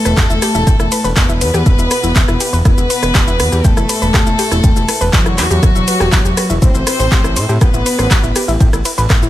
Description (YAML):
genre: melodic techno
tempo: 121 BPM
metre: 4/4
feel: straight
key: E minor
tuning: A4 = 440 Hz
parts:
  - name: fat analog lead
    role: melody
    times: 0.0-8.6 s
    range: F#3 to C4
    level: -20 LUFS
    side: equal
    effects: sidechain pumping, tape echo
  - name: rich chamber violin section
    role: second line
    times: 0.0-8.6 s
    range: F#4 to C5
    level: -21 LUFS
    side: left 2 dB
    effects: sidechain pumping, tape echo
  - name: soft round pluck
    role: arpeggios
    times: 0.1-9.3 s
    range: E4 to G6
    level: -22 LUFS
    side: left 1 dB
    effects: chorus, cassette tape, sidechain pumping, tape echo
  - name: fat analog bass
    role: bass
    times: 0.1-9.3 s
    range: E1 to A2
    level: -17 LUFS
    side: equal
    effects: sidechain pumping
  - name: deep house drum kit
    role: drums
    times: 0.1-9.3 s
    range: handclaps, hi-hat, ride cymbal, rim click, shaker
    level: -18 LUFS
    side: equal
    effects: none
  - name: electronic kick drum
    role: drums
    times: 0.2-9.2 s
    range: none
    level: -12 LUFS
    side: equal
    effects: none
room: light reverb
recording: lossy compression artefacts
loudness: -10 LUFS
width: side -14 dB against mid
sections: 0.0-9.3 A section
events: none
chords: 0.0 Em; 6.6 Am